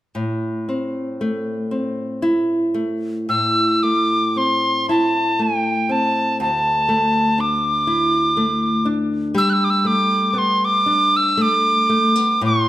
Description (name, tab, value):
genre	celtic folk, Celtic slow air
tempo	59 BPM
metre	3/4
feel	uneven beats, rubato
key	A minor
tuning	A4 = 445 Hz
part	nylon-string guitar	accompaniment	0.1-12.7 s	D2 to E4	-20 LUFS	equal	none
part	tin whistle	melody	3.3-12.7 s	G5 to F#6	-17 LUFS	equal	none
room	wet recital hall reverb, RT60 1.6 s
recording	none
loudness	-16 LUFS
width	side -14 dB against mid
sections	0.2-3.3 A section; 3.3-12.7 B section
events	none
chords	0.2 Am; 6.4 Dsus2; 9.4 Gadd9